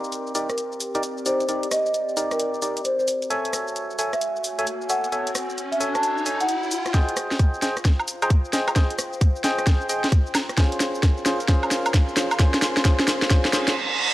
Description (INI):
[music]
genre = UK garage, two-step garage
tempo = 132 BPM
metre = 4/4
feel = swing 64% on 16ths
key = F minor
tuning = A4 = 442 Hz
[part]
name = percussive organ stab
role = stabs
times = 0.0-13.7 s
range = Db4 to Ab5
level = -27 LUFS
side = equal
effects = chorus, analog delay
[part]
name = garage drum kit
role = drums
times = 0.0-13.7 s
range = hi-hat, rim click, shaker, snare drum, woodblock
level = -25 LUFS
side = equal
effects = overdrive
[part]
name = warbly tape-like pad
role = texture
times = 0.0-13.8 s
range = C4 to C6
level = -34 LUFS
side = left 1 dB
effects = chorus, built-in reverb, sidechain pumping
[part]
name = marimba with soft mallets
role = melody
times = 0.5-6.9 s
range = Bb4 to A5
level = -26 LUFS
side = equal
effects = analog delay
[part]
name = riser and reverse cymbal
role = sound effects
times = 4.7-6.9, 13.6-14.1 s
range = none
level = -27 LUFS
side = right 2 dB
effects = none
[part]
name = electronic kick drum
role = drums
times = 6.9-13.4 s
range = none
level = -18 LUFS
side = equal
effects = overdrive
[sound]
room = moderate lush hall reverb, RT60 1.9 s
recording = dry, gritty hardware recording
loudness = -20 LUFS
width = side -16 dB against mid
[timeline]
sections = 0.0-6.9 A section; 6.9-14.1 B section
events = filter sweep on synth stab 0.0-6.9; riser 4.7-6.9; build-up 6.9-14.1; drum fill 6.9-13.8; reverse cymbal 13.6-14.1; stop 13.8-14.1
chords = 0.0 Cm7; 3.1 Gbm7; 6.9 Fm7; 10.6 Bbm7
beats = 0.12 0.58 1.03 | 1.49 1.94 2.40 2.85 | 3.30 3.76 4.21 4.67 | 5.12 5.58 6.03 6.49 | 6.94 7.39 7.85 8.30 | 8.76 9.21 9.67 10.12 | 10.58 11.03 11.49 11.94 | 12.39 12.85 13.30 13.76